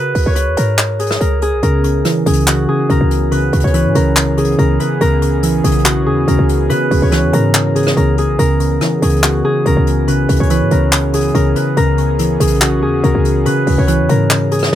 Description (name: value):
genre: hip hop, trap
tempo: 142 BPM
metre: 4/4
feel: half-time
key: C# dorian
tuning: A4 = 440 Hz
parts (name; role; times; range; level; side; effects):
- Celtic harp; melody; 0.0-14.8 s; F#4 to C#5; -17 LUFS; left 1 dB; low-pass filter, ping-pong delay
- short 808-style bass; bass; 0.0-14.8 s; B1 to C#3; -16 LUFS; equal; none
- jazz brush drum kit; drums; 0.1-14.8 s; handclaps, hi-hat, rim click, snare drum; -19 LUFS; left 1 dB; none
- soft electric-piano-like synth keys; accompaniment; 1.6-14.8 s; C#3 to E3; -16 LUFS; equal; chorus, low-pass filter
- warm analog pad; sustained chords; 1.6-14.8 s; E3 to G#4; -23 LUFS; equal; chorus
room: light reverb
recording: none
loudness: -11 LUFS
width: side -11 dB against mid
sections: 0.0-1.6 A section; 1.6-14.8 B section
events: none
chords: 0.0 C#7(no3); 1.6 C#m7